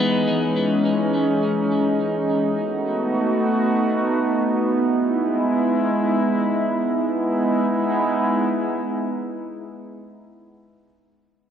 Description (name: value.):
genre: dream pop.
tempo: free time.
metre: none.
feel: none.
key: E major.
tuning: A4 = 444 Hz.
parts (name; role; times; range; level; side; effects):
warbly tape-like pad; sustained chords; 0.0-10.2 s; E3 to F#4; -19 LUFS; right 1 dB; chorus, built-in reverb.
twelve-string electric guitar; arpeggios; 0.0-0.8 s; E3 to G#4; -26 LUFS; left 3 dB; wide subtle chorus, ping-pong delay.
room: wet plate reverb, RT60 3.0 s.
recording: worn, warbling old tape, cassette tape, warbly pitch drift.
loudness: -19 LUFS.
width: side -8 dB against mid.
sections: 0.0-7.1 A section; 7.1-9.4 B section.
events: none.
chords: 0.0 Emaj7; 2.5 B7; 4.8 Emaj7.